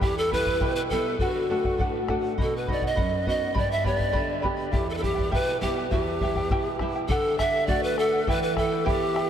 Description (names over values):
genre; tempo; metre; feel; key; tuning
andean folk, Andean ensemble; 102 BPM; 2/4; straight; E minor; A4 = 441 Hz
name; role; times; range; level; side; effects
breathy polished pan flute; melody; 0.0-9.3 s; F#4 to E5; -26 LUFS; equal; diffuse ambient delay
charango; accompaniment; 0.0-9.3 s; E4 to B5; -31 LUFS; right 1 dB; none
nylon-string guitar; accompaniment; 0.0-9.3 s; E2 to G4; -30 LUFS; right 2 dB; none
bombo; percussion; 0.0-9.3 s; none; -29 LUFS; left 1 dB; none
room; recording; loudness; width
wet huge ambient reverb, RT60 4.2 s; dreamy mix soaked in reverb, cassette tape; -23 LUFS; side -9 dB against mid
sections
0.0-7.1 A section; 7.1-9.3 B section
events
none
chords
0.0 Em; 1.2 D; 2.4 B; 3.6 G; 4.7 Em; 7.1 D; 8.3 Em